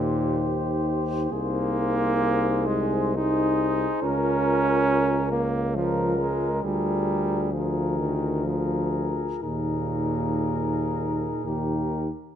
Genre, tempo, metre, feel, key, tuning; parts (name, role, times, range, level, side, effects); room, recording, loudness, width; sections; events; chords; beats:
classical, hymn-like piece for brass band; 58-71 BPM; 3/4; rubato; A4 = 440 Hz
dark cornet; melody; 0.0-12.1 s; Bb4 to C5; -32 LUFS; left 10 dB
mellow flugelhorn; second line; 0.0-12.1 s; G4 to Bb4; -32 LUFS; right 7 dB
bright trombone; accompaniment; 0.0-11.9 s; Bb2 to Eb4; -27 LUFS; right 3 dB
dark euphonium; accompaniment; 0.0-12.1 s; Eb4 to F4; -30 LUFS; left 4 dB
clear tuba; bass; 0.0-12.1 s; C2 to Eb2; -28 LUFS; equal
light reverb; close, detailed microphones; -22 LUFS; side -9 dB against mid
0.0-12.4 A section
0.0 Cm/Eb; 1.3 Ab/C; 4.0 Bbm/Db; 6.6 Bb7/D; 9.4 Ebsus4
0.45 | 1.32 2.20 3.17 | 4.03 4.89 5.76 | 6.63 7.52 8.46 | 9.42 10.43 11.45